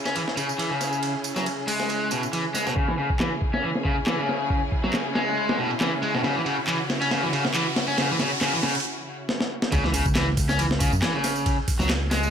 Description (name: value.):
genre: breakbeat, breaks.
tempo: 138 BPM.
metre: 4/4.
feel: swing 54% on 16ths.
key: C# minor pentatonic.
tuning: A4 = 443 Hz.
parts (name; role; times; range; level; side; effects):
rich studio string section; sustained chords; 0.0-9.7 s; C#3 to G#4; -31 LUFS; left 1 dB; sidechain pumping.
crunchy overdriven guitar; riff; 0.1-12.3 s; B2 to C#4; -25 LUFS; equal; tube saturation, low-pass filter, digital delay.
breakbeat sampler-style drum kit; drums; 0.1-12.2 s; hi-hat, kick drum, ride cymbal, snare drum; -27 LUFS; equal; high-pass filter on cymbals, low-pass filter on cymbals, high-pass filter on snare, low-pass filter on snare, high-pass filter on hats, low-pass filter on hats, high-pass filter on kick, low-pass filter on kick, high-pass filter on room, low-pass filter on room.
garage drum kit; drums; 0.1-12.3 s; handclaps, hi-hat, tambourine; -32 LUFS; right 2 dB; overdrive.
riser and impact; sound effects; 4.5-11.5 s; none; -34 LUFS; right 1 dB; none.
overdriven picked electric bass; bass; 9.7-12.3 s; C#2 to F#2; -25 LUFS; equal; none.
room: light reverb, digital ambience.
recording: none.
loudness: -22 LUFS.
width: side -8 dB against mid.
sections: 0.0-2.8 A section; 2.8-9.7 B section; 9.7-12.3 C section.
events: build-up 2.8-9.7; filter sweep on drum 2.8-9.7; riser 4.5-8.9; drum fill 6.2-8.9, 9.3-9.7; break 8.9-9.7; drop 9.7-12.3; impact 9.7-11.5.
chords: 0.0 C#m.